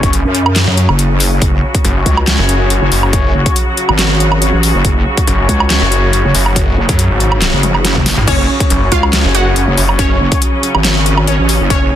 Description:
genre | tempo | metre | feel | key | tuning
heavy wobble dubstep | 140 BPM | 4/4 | swing 53% on 16ths, half-time | unclear | A4 = 440 Hz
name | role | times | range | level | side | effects
bright symphonic string section | sustained chords | 0.0-12.0 s | C#3 to F#4 | -19 LUFS | equal | vintage 12-bit sampler grit, sidechain pumping, low-pass filter
dark brass ensemble | stabs | 0.0-11.4 s | C#4 to C#5 | -21 LUFS | left 4 dB | tape echo
snarling distorted saw bass | bass | 0.0-10.2 s | F#1 to F#2 | -14 LUFS | equal | distortion, overdrive
dubstep drum kit | drums | 0.0-11.8 s | crash cymbal, handclaps, hi-hat, snare drum, toms, woodblock | -15 LUFS | equal | overdrive
electronic kick drum | drums | 0.0-11.8 s | none | -15 LUFS | equal | overdrive
wobble bass | bass | 0.2-11.9 s | F#1 to F#2 | -13 LUFS | equal | chorus, overdrive
wide unison pluck | melody | 8.3-12.0 s | C#4 to F#5 | -18 LUFS | right 1 dB | auto-pan, tape echo
room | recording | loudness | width
little or no reverb | dense, heavily limited modern master | -10 LUFS | side -11 dB against mid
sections
0.0-12.0 A section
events
drum fill 7.6-8.3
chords
0.0 F#5

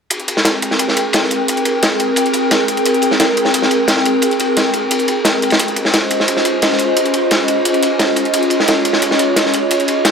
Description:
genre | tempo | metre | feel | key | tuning
liquid drum and bass | 175 BPM | 4/4 | straight | Ab major | A4 = 444 Hz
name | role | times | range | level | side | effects
airy breathy pad | sustained chords | 0.3-10.1 s | C4 to G5 | -15 LUFS | equal | chorus
crunchy breakbeat drum kit | drums | 0.1-10.1 s | ride cymbal, snare drum | -16 LUFS | equal | high-pass filter on cymbals, high-pass filter on snare, high-pass filter on room
electronic hi-hat | drums | 0.1-10.1 s | none | -22 LUFS | right 2 dB | none
room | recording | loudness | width
moderate plate reverb, RT60 0.9 s, studio reverb | none | -12 LUFS | side -6 dB against mid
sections
0.1-10.1 A section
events
none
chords
0.1 Abmaj9; 5.6 Dbmaj9

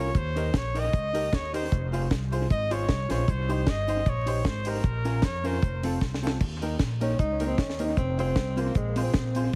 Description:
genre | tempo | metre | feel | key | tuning
ska | 153 BPM | 4/4 | swing 54% on 8ths | unclear | A4 = 439 Hz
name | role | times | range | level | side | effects
clear trumpet | melody | 0.0-5.8 s | Bb4 to Eb5 | -34 LUFS | equal | dub echo
mellow electric guitar | accompaniment | 0.0-9.5 s | Bb3 to C5 | -37 LUFS | equal | none
bright upright piano | stabs | 0.0-9.5 s | C4 to C5 | -39 LUFS | equal | none
upright bass | bass | 0.0-9.5 s | F1 to F2 | -32 LUFS | equal | none
deep reggae drum kit | drums | 0.1-9.6 s | crash cymbal, hi-hat, kick drum, snare drum | -30 LUFS | equal | dub echo
cabasa | percussion | 0.1-9.6 s | none | -57 LUFS | equal | none
breathy tenor saxophone | melody | 7.0-9.5 s | Ab3 to Eb4 | -32 LUFS | equal | dub echo
room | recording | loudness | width
light reverb | heavily compressed radio sound, multiband compression, vinyl crackle | -27 LUFS | mono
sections
0.0-6.4 A section; 6.4-9.6 A section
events
trumpet solo 0.0-6.4; drum fill 6.0-6.4; tenor saxophone solo 6.4-9.6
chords
0.1 Eb; 1.7 Fm; 3.3 Cm; 4.8 Bbm; 5.6 F; 6.4 Eb; 8.0 Fm

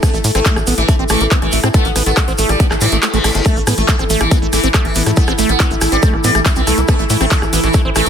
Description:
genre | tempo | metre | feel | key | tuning
psychedelic trance | 140 BPM | 4/4 | straight | unclear | A4 = 439 Hz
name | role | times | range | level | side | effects
sitar | melody | 0.0-8.1 s | E3 to B3 | -21 LUFS | left 1 dB | phaser, sidechain pumping, tape echo
liquid acid bass | riff | 0.0-8.1 s | G3 to C4 | -20 LUFS | right 1 dB | phaser, auto-pan, sidechain pumping, tape echo
big-room dance drum kit | drums | 0.0-8.1 s | handclaps, hi-hat, rim click | -19 LUFS | equal | none
electronic kick drum | drums | 0.0-7.8 s | none | -14 LUFS | equal | none
tube shaker | percussion | 0.0-8.1 s | none | -25 LUFS | right 4 dB | none
warbly tape-like pad | texture | 0.0-8.1 s | E4 to B5 | -23 LUFS | right 1 dB | chorus, built-in reverb, sidechain pumping
tight sequencer bass | bass | 0.1-8.1 s | G1 to A2 | -18 LUFS | equal | none
reverse cymbal | sound effects | 2.8-3.5 s | none | -24 LUFS | left 3 dB | none
pulsing gated texture | sustained chords | 3.7-8.1 s | E3 to E4 | -23 LUFS | left 2 dB | chorus, built-in reverb, sidechain pumping
room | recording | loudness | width
light reverb | dense, heavily limited modern master | -11 LUFS | side -8 dB against mid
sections
0.0-8.1 A section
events
reverse cymbal 2.8-3.5; kick drops out 3.0-3.5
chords
0.0 A5

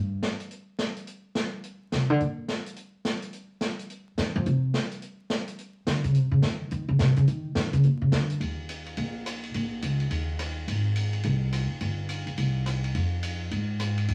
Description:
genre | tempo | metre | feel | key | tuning
jazz, small-group swing and bop | 212 BPM | 4/4 | swing 62% on 8ths | Eb major | A4 = 440 Hz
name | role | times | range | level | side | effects
upright bass | bass | 0.0-14.1 s | G1 to F3 | -27 LUFS | equal | none
open jazz drum kit | drums | 0.2-14.1 s | hi-hat, ride cymbal, rim click, snare drum | -35 LUFS | equal | none
room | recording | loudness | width
wet studio reverb, RT60 0.6 s | vinyl crackle | -28 LUFS | mono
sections
0.0-8.4 A section; 8.4-14.1 B section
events
upright bass solo 0.0-8.4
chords
none

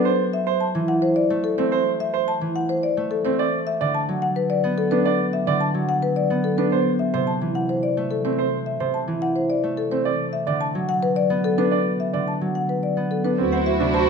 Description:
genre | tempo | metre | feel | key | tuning
classical, minimalist pattern music | 108 BPM | 3/4 | straight | D mixolydian | A4 = 440 Hz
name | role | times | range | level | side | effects
marimba with medium mallets | melody | 0.0-14.1 s | A4 to A5 | -24 LUFS | left 6 dB | none
concert harp | accompaniment | 0.0-14.1 s | C3 to B3 | -24 LUFS | right 1 dB | none
clear baby grand piano | arpeggios | 0.0-14.1 s | C4 to D5 | -25 LUFS | right 9 dB | none
clear clarinet | second line | 13.4-14.1 s | F#4 | -26 LUFS | right 8 dB | none
warm symphonic violin section | sustained chords | 13.4-14.1 s | E4 to F#4 | -26 LUFS | left 3 dB | none
mellow bass clarinet | bass | 13.4-14.1 s | D2 | -25 LUFS | left 2 dB | none
room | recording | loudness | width
moderate recital hall reverb, RT60 1.6 s | minimal, uncompressed stereo recording | -20 LUFS | side -5 dB against mid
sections
0.0-13.4 A section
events
none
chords
0.1 D7 (rootless); 3.4 Bm7; 6.7 D7 (rootless); 10.1 Bm7; 13.4 Dadd9

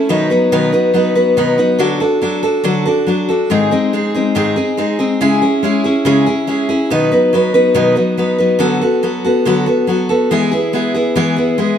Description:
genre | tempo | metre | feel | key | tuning
country | 141 BPM | 4/4 | straight | unclear | A4 = 440 Hz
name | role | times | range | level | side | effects
picked steel-string acoustic guitar | solo | 0.0-11.8 s | G#2 to B4 | -12 LUFS | equal | none
room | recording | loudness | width
moderate plate reverb, RT60 2.5 s | none | -12 LUFS | side -9 dB against mid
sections
0.0-1.8 A section; 1.8-11.8 B section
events
none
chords
0.1 B; 1.8 D; 3.5 G#; 5.2 C#m; 6.9 B; 8.6 D6; 10.3 E

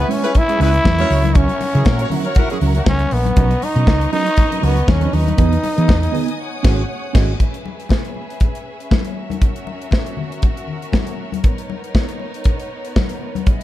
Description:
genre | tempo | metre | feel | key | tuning
disco | 119 BPM | 4/4 | swing 56% on 16ths | unclear | A4 = 440 Hz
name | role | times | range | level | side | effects
growling trombone | melody | 0.0-6.6 s | B3 to E4 | -20 LUFS | equal | none
mellow electric guitar | accompaniment | 0.0-7.3 s | F#3 to D#5 | -24 LUFS | right 8 dB | none
rich studio string section | sustained chords | 0.0-13.6 s | B3 to D#6 | -29 LUFS | equal | none
warm horn section | stabs | 0.0-2.8 s | A#3 to C#5 | -24 LUFS | left 1 dB | none
hollow-body short-scale fingered electric bass | bass | 0.0-7.3 s | G#1 to E3 | -16 LUFS | equal | none
modern studio drum kit | drums | 0.1-13.6 s | crash cymbal, hi-hat, kick drum, snare drum | -17 LUFS | equal | none
congas | percussion | 0.1-13.6 s | none | -27 LUFS | left 7 dB | none
room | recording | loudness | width
studio reverb | dark, warm production | -15 LUFS | side -14 dB against mid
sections
0.0-7.4 A section; 7.4-13.6 B section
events
band accent 6.4-7.4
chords
0.0 C#m7; 1.1 F#7/C#; 3.4 Bmaj9; 5.4 Emaj7; 6.4 G#7sus4; 7.4 C#m7; 9.2 F#7/C#; 11.4 Bmaj9

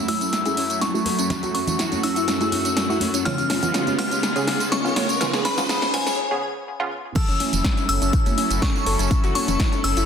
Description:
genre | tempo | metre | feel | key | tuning
progressive house | 123 BPM | 4/4 | straight | F# minor | A4 = 440 Hz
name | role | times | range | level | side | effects
supersaw pad | sustained chords | 0.0-10.1 s | F#2 to A4 | -28 LUFS | equal | phaser, sidechain pumping
soft round pluck | arpeggios | 0.0-10.1 s | C#4 to C#5 | -28 LUFS | left 1 dB | wide subtle chorus, sidechain pumping, ping-pong delay
riser | sound effects | 2.5-6.2 s | none | -32 LUFS | equal | none
glassy synth bell | melody | 0.1-10.1 s | G#5 to E#6 | -26 LUFS | left 3 dB | chorus, sidechain pumping, low-pass filter, digital delay
wide unison pluck | stabs | 0.1-6.9 s | C#3 to G#4 | -29 LUFS | right 3 dB | sidechain pumping, ping-pong delay
deep house drum kit | drums | 0.1-10.1 s | crash cymbal, hi-hat, snare drum, tambourine | -26 LUFS | right 1 dB | overdrive, sidechain pumping on hats, sidechain pumping on perc, sidechain pumping on cymbals
congas | percussion | 1.1-9.6 s | none | -31 LUFS | right 6 dB | sidechain pumping on perc
electronic kick drum | drums | 7.2-9.7 s | none | -21 LUFS | equal | none
round analog bass | bass | 7.3-10.1 s | E1 to F#1 | -25 LUFS | equal | tube saturation, sidechain pumping
room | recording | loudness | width
moderate digital room reverb, RT60 1.1 s | dense, heavily limited modern master, high-pass filter | -19 LUFS | side -7 dB against mid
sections
0.0-7.2 A section; 7.2-10.1 B section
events
build-up 0.0-7.2; drum fill 0.0-6.2; filter sweep on synth pluck 0.0-7.2; filter sweep on synth bell 0.0-7.2; riser 2.5-6.2; break 6.2-7.2; drop 7.2-10.1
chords
0.0 F#m7; 3.3 C#7; 7.2 F#m7

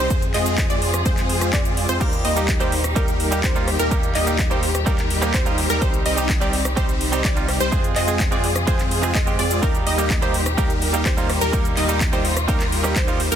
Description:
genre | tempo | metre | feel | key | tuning
EDM, festival progressive house | 126 BPM | 4/4 | straight | Eb major | A4 = 440 Hz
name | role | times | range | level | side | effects
warm studio string section | sustained chords | 0.0-13.4 s | Bb2 to Ab4 | -29 LUFS | left 2 dB | sidechain pumping
wide unison pluck | arpeggios | 0.0-13.4 s | Bb4 to Eb5 | -27 LUFS | equal | sidechain pumping, ping-pong delay
supersaw chords | riff | 0.0-13.4 s | G3 to Eb5 | -25 LUFS | equal | sidechain pumping, ping-pong delay
saturated sub bass | bass | 0.0-13.4 s | C2 to F2 | -25 LUFS | equal | sidechain pumping
electronic kick drum | drums | 0.1-13.1 s | none | -22 LUFS | equal | overdrive
house drum kit | drums | 0.1-13.4 s | crash cymbal, handclaps, hi-hat, rim click, shaker | -26 LUFS | equal | overdrive
direct-recorded clean electric guitar | accompaniment | 2.0-13.2 s | G3 to Ab4 | -27 LUFS | right 6 dB | sidechain pumping, ping-pong delay
room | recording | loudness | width
light reverb | dense, heavily limited modern master | -17 LUFS | side -9 dB against mid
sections
0.0-13.4 A section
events
none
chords
0.1 Fm; 2.0 Eb; 5.8 Cm; 7.7 Fm; 9.6 Eb

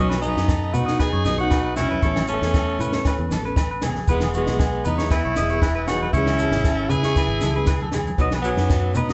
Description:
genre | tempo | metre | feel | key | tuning
highlife guitar band | 117 BPM | 4/4 | straight | E major | A4 = 437 Hz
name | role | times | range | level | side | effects
growling tenor saxophone | melody | 0.0-9.1 s | B3 to G#4 | -28 LUFS | equal | none
breathy alto saxophone | second line | 0.0-9.1 s | F#3 to E4 | -32 LUFS | equal | none
nylon-string guitar | accompaniment | 0.0-9.1 s | E3 to A4 | -32 LUFS | equal | none
clean electric guitar | arpeggios | 0.0-9.1 s | F#4 to D#5 | -31 LUFS | equal | none
fingered electric bass | bass | 0.0-9.1 s | E1 to C#3 | -28 LUFS | equal | none
compact cocktail drum kit | drums | 0.1-9.1 s | kick drum, snare drum | -26 LUFS | equal | none
agogo bells | percussion | 0.1-8.8 s | none | -40 LUFS | equal | none
congas | percussion | 0.1-9.1 s | none | -34 LUFS | equal | none
maracas | percussion | 0.2-9.1 s | none | -47 LUFS | equal | none
room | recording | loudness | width
moderate large studio reverb, RT60 1.5 s | band playing live in one room, nothing above 8.0 kHz | -21 LUFS | mono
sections
0.0-9.1 A section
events
none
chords
0.0 B; 2.0 Aadd9; 4.1 E; 6.1 C#m; 8.2 B

